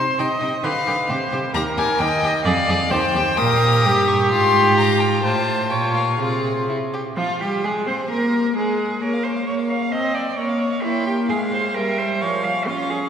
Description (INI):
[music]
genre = quick classical-period movement for string quartet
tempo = 130 BPM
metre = 2/4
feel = rubato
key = F minor from 3.4 s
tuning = A4 = 445 Hz
[part]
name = warm violin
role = melody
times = 0.0-13.1 s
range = F4 to Eb6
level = -24 LUFS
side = left 4 dB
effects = none
[part]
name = warm violin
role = second line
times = 0.0-13.1 s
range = Eb4 to G5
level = -28 LUFS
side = left 1 dB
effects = none
[part]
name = rich viola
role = accompaniment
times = 0.0-13.1 s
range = F3 to Eb5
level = -21 LUFS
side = equal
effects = none
[part]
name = rich cello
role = bass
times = 0.0-13.1 s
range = Eb2 to F5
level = -23 LUFS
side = right 2 dB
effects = none
[sound]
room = wet church reverb, RT60 2.9 s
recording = recorded in a church or concert hall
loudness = -17 LUFS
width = side -8 dB against mid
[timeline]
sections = 0.0-7.2 A section; 7.2-13.1 B section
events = none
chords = 0.0 Cm; 0.6 G7; 1.1 C5; 1.6 Eb; 2.5 F5; 2.9 Eb; 3.4 Eb7; 4.3 Fm/Ab; 5.2 F/A; 5.7 Bbm; 6.2 Fm/C; 6.7 N.C.; 7.2 Fm; 8.1 N.C.; 9.0 Bbm; 9.9 Adim/C; 10.4 Bbm; 10.8 C7/Bb; 11.3 Fm/Ab; 11.8 C7/G; 12.2 Fm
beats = 0.18 | 0.64 1.10 | 1.55 2.01 | 2.46 2.92 | 3.38 3.84 | 4.31 4.77 | 5.23 5.70 | 6.19 6.68 | 7.17 7.64 | 8.10 8.56 | 9.02 9.46 | 9.91 10.37 | 10.82 11.29 | 11.75 12.21 | 12.67